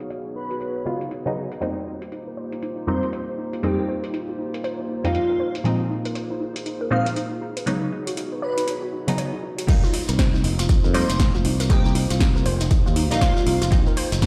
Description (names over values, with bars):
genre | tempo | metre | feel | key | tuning
deep house | 119 BPM | 4/4 | swing 60% on 16ths | F minor | A4 = 440 Hz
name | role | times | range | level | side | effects
dark analog pad | sustained chords | 0.0-14.3 s | Bb3 to Db5 | -34 LUFS | equal | chorus, vintage 12-bit sampler grit, sidechain pumping
warbly dusty pluck | arpeggios | 0.0-14.3 s | Eb4 to Db5 | -33 LUFS | equal | chorus, vintage 12-bit sampler grit, sidechain pumping, dub echo
deep house drum kit | drums | 0.0-14.3 s | crash cymbal, hi-hat, snare drum | -32 LUFS | equal | overdrive
airy dreamy lead | melody | 0.4-13.6 s | F4 to F5 | -30 LUFS | equal | chorus, dub echo
filtered dub chord stab | stabs | 0.9-14.3 s | F2 to F4 | -29 LUFS | equal | phaser, tape echo
modern bright fingered electric bass | bass | 9.7-14.3 s | F1 to F2 | -25 LUFS | equal | sidechain pumping
electronic kick drum | drums | 9.7-14.3 s | none | -21 LUFS | equal | overdrive
shekere | percussion | 9.7-14.3 s | none | -37 LUFS | equal | none
room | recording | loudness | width
moderate digital room reverb, RT60 1.2 s | played on a big sound system in a bare room, large studio reverb, low-pass filter | -23 LUFS | mono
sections
0.0-9.7 A section; 9.7-14.3 B section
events
filter sweep on synth pluck 0.0-9.7; filter sweep 0.0-9.7; drop 9.7-14.3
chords
0.0 Db9sus4; 1.6 F9sus4; 5.7 Bb9sus4; 7.4 Db9sus4; 9.7 F9sus4; 13.7 Bb9sus4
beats
0.10 0.61 1.11 | 1.62 2.12 2.62 3.13 | 3.63 4.14 4.64 5.15 | 5.65 6.15 6.66 7.16 | 7.67 8.17 8.68 9.18 | 9.68 10.19 10.69 11.20 | 11.70 12.21 12.71 13.21 | 13.72 14.22